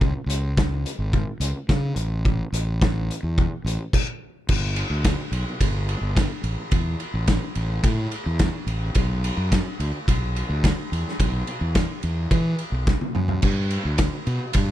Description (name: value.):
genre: indie rock.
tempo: 107 BPM.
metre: 4/4.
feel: straight.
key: unclear.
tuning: A4 = 440 Hz.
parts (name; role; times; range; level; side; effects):
fuzz fingered electric bass; bass; 0.0-14.7 s; G1 to E3; -24 LUFS; equal; overdrive.
loose indie drum kit; drums; 0.0-14.7 s; crash cymbal, hi-hat, kick drum, ride cymbal, snare drum, toms; -23 LUFS; equal; none.
room: little or no reverb.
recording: none.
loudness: -21 LUFS.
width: side -13 dB against mid.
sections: 0.0-4.5 A section; 4.5-14.7 B section.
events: drum fill 12.9-13.4.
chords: none.